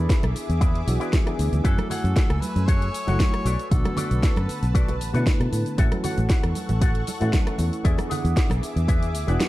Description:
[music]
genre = nu-disco, nu disco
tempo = 116 BPM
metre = 4/4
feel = straight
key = unclear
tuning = A4 = 440 Hz
[part]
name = dark concert grand piano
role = accompaniment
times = 0.0-9.5 s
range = D3 to G#5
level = -31 LUFS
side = left 1 dB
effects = vintage 12-bit sampler grit, sidechain pumping, digital delay
[part]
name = lush unison pad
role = sustained chords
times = 0.0-9.5 s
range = A3 to E6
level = -35 LUFS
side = equal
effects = chorus, sidechain pumping
[part]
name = electric guitar with an envelope filter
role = riff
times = 0.0-9.4 s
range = E4 to F#5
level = -34 LUFS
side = left 3 dB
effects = analog chorus, digital delay
[part]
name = fingered electric bass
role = bass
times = 0.0-9.4 s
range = E1 to B2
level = -23 LUFS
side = equal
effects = sidechain pumping
[part]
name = electronic kick drum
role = drums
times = 0.1-9.0 s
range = none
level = -21 LUFS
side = equal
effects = overdrive, studio reverb
[part]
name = house drum kit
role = drums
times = 0.1-9.5 s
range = hi-hat, rim click, shaker, snare drum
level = -32 LUFS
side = equal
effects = overdrive, studio reverb
[part]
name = congas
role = percussion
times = 0.2-9.5 s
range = none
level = -32 LUFS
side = right 3 dB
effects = none
[part]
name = edgy tenor saxophone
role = melody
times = 1.6-4.7 s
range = A4 to C#5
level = -33 LUFS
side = left 1 dB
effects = digital delay
[sound]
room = digital ambience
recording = dark, warm production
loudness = -20 LUFS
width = side -16 dB against mid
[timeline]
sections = 0.0-9.5 A section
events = none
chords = 0.0 E7; 1.6 F#m9; 3.5 Bm7; 5.8 A6; 7.9 E7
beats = 0.09 0.61 1.13 | 1.65 2.16 2.68 3.20 | 3.71 4.23 4.75 5.27 | 5.78 6.30 6.82 7.33 | 7.85 8.37 8.89 9.40

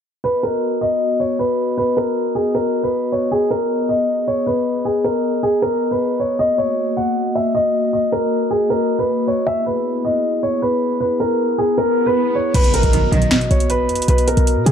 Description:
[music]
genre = hip hop, trap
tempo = 156 BPM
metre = 4/4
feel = half-time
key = B major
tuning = A4 = 440 Hz
[part]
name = dark baby grand piano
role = melody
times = 0.2-14.7 s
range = G#4 to F#5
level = -18 LUFS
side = equal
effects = none
[part]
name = glass harmonica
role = sustained chords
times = 0.4-14.7 s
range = A#3 to D#5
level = -22 LUFS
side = left 2 dB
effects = none
[part]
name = swell and impact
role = sound effects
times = 11.4-14.1 s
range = none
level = -23 LUFS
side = equal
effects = none
[part]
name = short 808-style bass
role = bass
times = 12.5-14.7 s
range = B1 to B2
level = -16 LUFS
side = equal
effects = none
[part]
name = trap drum kit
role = drums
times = 12.5-14.7 s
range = crash cymbal, finger snaps, hi-hat, snare drum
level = -22 LUFS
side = equal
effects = none
[part]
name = warm studio string section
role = stabs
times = 12.9-13.3 s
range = B1 to D#3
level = -22 LUFS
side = right 4 dB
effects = none
[sound]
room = light reverb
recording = dark, warm production, low-pass filter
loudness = -16 LUFS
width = side -8 dB against mid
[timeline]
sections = 0.2-12.5 A section; 12.5-14.7 B section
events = filter sweep 0.2-12.5; swell 11.4-12.5; impact 12.5-14.1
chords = 0.2 B; 3.3 G#m; 6.4 D#m; 9.5 E; 12.5 B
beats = | 0.24 0.62 1.01 1.39 | 1.77 2.16 2.54 2.93 | 3.31 3.70 4.08 4.47 | 4.85 5.24 5.62 6.01 | 6.39 6.78 7.16 7.54 | 7.93 8.31 8.70 9.08 | 9.47 9.85 10.24 10.62 | 11.01 11.39 11.78 12.16 | 12.54 12.93 13.31 13.70 | 14.08 14.47

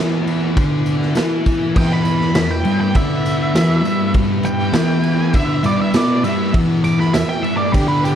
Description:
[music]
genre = garage rock duo or trio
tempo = 100 BPM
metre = 4/4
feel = straight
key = unclear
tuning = A4 = 441 Hz
[part]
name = combo organ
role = sustained chords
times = 0.0-8.2 s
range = B3 to G#5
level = -28 LUFS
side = equal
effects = none
[part]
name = thick fuzz guitar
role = riff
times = 0.0-8.2 s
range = E2 to E4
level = -17 LUFS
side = left 1 dB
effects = distortion
[part]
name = raw garage drum kit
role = drums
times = 0.3-8.2 s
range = crash cymbal, kick drum, snare drum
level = -20 LUFS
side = equal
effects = none
[part]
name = tambourine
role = percussion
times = 0.3-8.2 s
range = none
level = -40 LUFS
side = left 3 dB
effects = none
[part]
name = octave-fuzz lead guitar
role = melody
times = 1.8-8.2 s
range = G4 to D6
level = -22 LUFS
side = right 2 dB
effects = distortion
[sound]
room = moderate stone room reverb, RT60 1.1 s, small room ambience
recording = cassette tape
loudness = -14 LUFS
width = side -9 dB against mid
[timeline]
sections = 0.0-1.8 A section; 1.8-8.2 B section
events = lead electric guitar solo 1.8-8.2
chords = 0.0 E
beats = 0.56 1.16 | 1.76 2.36 2.95 3.55 | 4.15 4.75 5.34 5.94 | 6.54 7.14 7.74

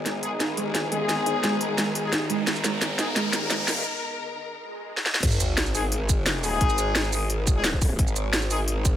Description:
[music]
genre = dark technical drum and bass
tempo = 174 BPM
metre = 4/4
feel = straight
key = G# minor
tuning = A4 = 440 Hz
[part]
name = warm studio string section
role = sustained chords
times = 0.0-5.2 s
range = D#3 to A#4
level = -32 LUFS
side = left 1 dB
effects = sidechain pumping, low-pass filter
[part]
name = growl bass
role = bass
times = 0.0-9.0 s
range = G#1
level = -29 LUFS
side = equal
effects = chorus, high-pass filter
[part]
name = riser, swell and sub drop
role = sound effects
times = 1.5-6.6 s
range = none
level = -32 LUFS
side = equal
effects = none
[part]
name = ethereal airy pad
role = texture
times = 0.0-3.9 s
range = G#4 to A#5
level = -36 LUFS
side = left 3 dB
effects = ensemble chorus, built-in reverb, sidechain pumping
[part]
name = soft round pluck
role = arpeggios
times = 0.1-3.6 s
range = G#3 to D#4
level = -30 LUFS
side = right 3 dB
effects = lush chorus, sidechain pumping, dub echo
[part]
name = drum and bass drum kit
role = drums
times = 0.1-8.9 s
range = crash cymbal, hi-hat, shaker, snare drum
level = -26 LUFS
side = equal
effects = none
[part]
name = clear brass ensemble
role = stabs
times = 0.2-3.1, 5.7-8.6 s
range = G#3 to G#4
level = -30 LUFS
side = left 4 dB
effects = low-pass filter, dub echo
[part]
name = electronic kick drum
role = drums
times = 5.2-8.9 s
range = none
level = -22 LUFS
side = equal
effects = none
[sound]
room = light reverb, digital ambience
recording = high-pass filter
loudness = -22 LUFS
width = side -11 dB against mid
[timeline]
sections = 0.0-5.2 A section; 5.2-9.0 B section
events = build-up 0.0-5.2; drum fill 0.0-3.9, 5.0; filter sweep on synth pluck 0.0-5.2; filter sweep 0.0-5.2; riser 1.5-3.9; break 3.9-5.2; swell 4.7-5.2; drop 5.2-9.0; impact 5.2-6.6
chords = 0.0 G#m; 5.2 G#5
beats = 0.06 0.40 0.75 | 1.09 1.44 1.78 2.13 | 2.47 2.81 3.16 3.50 | 3.85 4.20 4.54 4.88 | 5.23 5.57 5.92 6.26 | 6.61 6.95 7.30 7.64 | 7.99 8.33 8.68

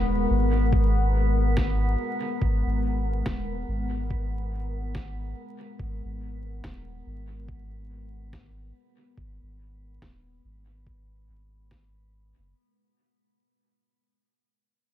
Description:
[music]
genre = ambient dub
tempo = 71 BPM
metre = 4/4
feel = swing 59% on 16ths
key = G# minor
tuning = A4 = 440 Hz
[part]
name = deep dark ambient pad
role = sustained chords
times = 0.0-12.6 s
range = G#3 to F#5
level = -31 LUFS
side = left 2 dB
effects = chorus, built-in reverb
[part]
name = soft dub sub bass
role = bass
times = 0.0-12.5 s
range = D#1 to G#1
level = -27 LUFS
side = equal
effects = none
[part]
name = drifting glass-harmonics texture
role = texture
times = 0.0-12.6 s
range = B3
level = -37 LUFS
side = left 1 dB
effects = chorus, built-in reverb
[part]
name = electronic kick drum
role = drums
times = 0.7-11.9 s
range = none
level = -29 LUFS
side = equal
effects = none
[part]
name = electronic snare drum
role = drums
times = 1.6-11.9 s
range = none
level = -38 LUFS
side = equal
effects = dub echo
[sound]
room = little or no reverb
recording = dark, warm production, vinyl crackle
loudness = -24 LUFS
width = side -11 dB against mid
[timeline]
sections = 0.0-12.6 A section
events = fade-out 0.0-12.6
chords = 0.0 G#m9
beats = 0.72 1.57 | 2.41 3.26 4.10 4.95 | 5.79 6.64 7.48 8.33 | 9.17 10.02 10.86 11.71

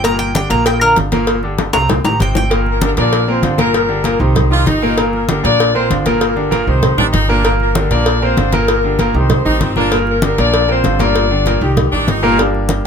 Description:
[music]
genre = latin, salsa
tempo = 194 BPM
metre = 4/4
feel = straight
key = G minor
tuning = A4 = 439 Hz
[part]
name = Cuban tres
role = melody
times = 0.0-2.5 s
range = Bb4 to Bb5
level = -15 LUFS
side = right 1 dB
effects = none
[part]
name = bright concert grand piano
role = accompaniment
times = 0.0-12.9 s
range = Bb2 to C5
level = -17 LUFS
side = equal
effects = none
[part]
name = upright bass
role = bass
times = 0.0-12.8 s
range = G1 to C2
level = -18 LUFS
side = right 1 dB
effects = none
[part]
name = congas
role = percussion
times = 0.0-12.8 s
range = none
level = -19 LUFS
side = left 1 dB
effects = none
[part]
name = cowbell and bongos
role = percussion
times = 0.0-12.9 s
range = none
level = -20 LUFS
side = left 2 dB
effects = none
[part]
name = dark horn section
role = melody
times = 2.7-12.1 s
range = G3 to D5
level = -17 LUFS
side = left 3 dB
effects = none
[part]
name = clear saxophone section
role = second line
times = 4.5-12.4 s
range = C4 to F4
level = -18 LUFS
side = right 1 dB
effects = none
[sound]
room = light reverb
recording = close, detailed microphones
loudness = -11 LUFS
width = side -6 dB against mid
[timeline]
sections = 0.0-2.5 A section; 2.5-12.4 B section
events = Cuban tres solo 0.0-2.5; drum fill 1.6-2.5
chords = 0.0 Gm; 0.7 Bb; 1.3 Gm; 1.9 Cm; 2.5 Gm; 3.1 Bbadd9; 3.7 Gm; 4.4 Cm; 5.0 Gm; 5.6 Bbadd9; 6.2 Gm; 6.8 Cm; 7.4 Gm; 8.1 Bbadd9; 8.7 Gm; 9.3 Cm; 9.9 Gm; 10.5 Bbadd9; 11.2 Gm; 11.8 Cm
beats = | 0.04 0.35 0.66 0.97 | 1.27 1.58 1.89 2.20 | 2.51 2.82 3.13 3.44 | 3.74 4.05 4.36 4.67 | 4.98 5.29 5.60 5.90 | 6.21 6.52 6.83 7.14 | 7.45 7.76 8.06 8.37 | 8.68 8.99 9.30 9.61 | 9.92 10.23 10.54 10.84 | 11.15 11.46 11.77 12.08 | 12.39 12.70

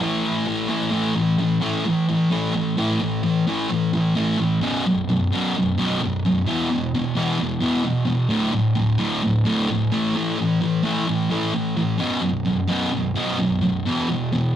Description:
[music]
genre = rock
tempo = 130 BPM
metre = 4/4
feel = straight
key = unclear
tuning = A4 = 439 Hz
[part]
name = thick fuzz guitar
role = solo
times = 0.0-14.5 s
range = B1 to A3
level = -19 LUFS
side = equal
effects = distortion
[sound]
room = moderate small room reverb, RT60 0.5 s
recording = rough rehearsal-room recording, warm saturation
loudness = -19 LUFS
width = side -10 dB against mid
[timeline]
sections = 0.9-4.6 A section; 4.6-14.6 B section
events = none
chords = 0.0 A5; 4.6 B5; 6.5 E5; 8.3 D5; 9.9 A5; 12.0 B5; 13.8 E5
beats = 0.00 0.46 | 0.92 1.39 1.85 2.31 | 2.77 3.23 3.69 4.16 | 4.62 5.08 5.54 6.00 | 6.47 6.93 7.39 7.85 | 8.31 8.78 9.24 9.70 | 10.16 10.62 11.08 11.54 | 12.00 12.46 12.93 13.39 | 13.85 14.31

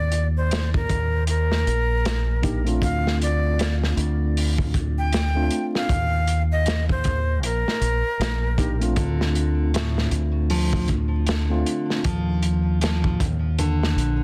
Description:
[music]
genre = trip hop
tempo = 78 BPM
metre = 4/4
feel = swing 59% on 16ths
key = unclear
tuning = A4 = 443 Hz
[part]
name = breathy bright jazz flute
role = melody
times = 0.0-8.9 s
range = Bb4 to G5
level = -30 LUFS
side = equal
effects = tape echo
[part]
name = deep dub fingered electric bass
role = bass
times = 0.0-14.2 s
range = Bb1 to Eb2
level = -25 LUFS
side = equal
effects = tube saturation
[part]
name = crunchy breakbeat drum kit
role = drums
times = 0.1-14.2 s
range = hi-hat, kick drum, snare drum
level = -28 LUFS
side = equal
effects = vintage 12-bit sampler grit
[part]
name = bright tine electric piano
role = accompaniment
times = 2.4-12.0 s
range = A3 to G4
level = -31 LUFS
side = equal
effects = tremolo, tape echo
[part]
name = nylon-string guitar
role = arpeggios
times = 9.0-14.2 s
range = A2 to F3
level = -30 LUFS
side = equal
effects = vintage 12-bit sampler grit, tape echo
[sound]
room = small room ambience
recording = dense, heavily limited modern master, vinyl crackle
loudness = -22 LUFS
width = mono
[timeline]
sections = 0.0-14.2 A section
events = none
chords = 0.0 Eb5; 2.8 Dm7; 5.9 Eb5; 9.0 Dm7; 12.0 Ebmaj7(no3)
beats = 0.51 1.28 2.04 | 2.81 3.58 4.35 5.12 | 5.89 6.66 7.43 8.20 | 8.97 9.74 10.51 11.28 | 12.04 12.81 13.58

